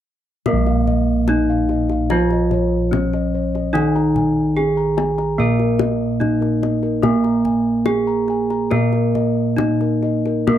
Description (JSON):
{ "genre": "Javanese gamelan", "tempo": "73 BPM", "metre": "4/4", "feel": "straight", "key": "Bb slendro", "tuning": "A4 = 439 Hz", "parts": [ { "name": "gamelan-type bronze metallophone", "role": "melody", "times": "0.5-10.6 s", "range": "Bb3 to Bb4", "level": "-20 LUFS", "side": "equal", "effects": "none" }, { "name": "gamelan-type bronze metallophone", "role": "accompaniment", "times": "0.5-10.6 s", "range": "Eb3 to Bb3", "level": "-21 LUFS", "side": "right 4 dB", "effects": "none" }, { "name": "gamelan-type bossed gongs", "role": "arpeggios", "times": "0.5-10.6 s", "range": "Bb4 to Bb5", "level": "-26 LUFS", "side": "left 6 dB", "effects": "none" }, { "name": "gamelan-type bossed gongs", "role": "bass", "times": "0.5-10.6 s", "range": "Bb1 to Bb4", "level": "-22 LUFS", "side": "left 1 dB", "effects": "none" }, { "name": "kendang", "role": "percussion", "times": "0.5-10.6 s", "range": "none", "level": "-24 LUFS", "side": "left 7 dB", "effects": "none" } ], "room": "light reverb", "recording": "dry, close 1970s-style studio recording", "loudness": "-16 LUFS", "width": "side -11 dB against mid", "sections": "0.5-10.6 A section", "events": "none", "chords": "none", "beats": "| 0.47 1.29 2.11 2.93 | 3.75 4.57 5.40 6.22 | 7.04 7.87 8.72 9.59 | 10.48" }